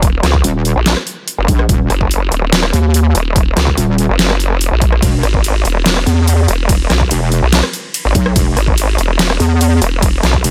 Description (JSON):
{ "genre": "heavy wobble dubstep", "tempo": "144 BPM", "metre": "4/4", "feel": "half-time", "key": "Eb phrygian", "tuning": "A4 = 440 Hz", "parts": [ { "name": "vowel-sweep wobble bass", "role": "bass", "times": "0.0-10.4 s", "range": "Eb1 to Db2", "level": "-16 LUFS", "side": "equal", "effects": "chorus, overdrive" }, { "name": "dubstep drum kit", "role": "drums", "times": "0.0-10.5 s", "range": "hi-hat, ride cymbal, rim click, snare drum", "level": "-20 LUFS", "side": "equal", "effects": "overdrive" }, { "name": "electronic kick drum", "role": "drums", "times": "0.0-10.4 s", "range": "none", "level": "-17 LUFS", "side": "equal", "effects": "overdrive" }, { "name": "wobble bass", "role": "bass", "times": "0.4-10.5 s", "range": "Eb1 to E2", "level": "-14 LUFS", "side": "equal", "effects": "chorus, overdrive" } ], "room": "digital ambience", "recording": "none", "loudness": "-13 LUFS", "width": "mono", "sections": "0.0-10.5 A section", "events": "none", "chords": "0.0 Ebm; 5.0 E" }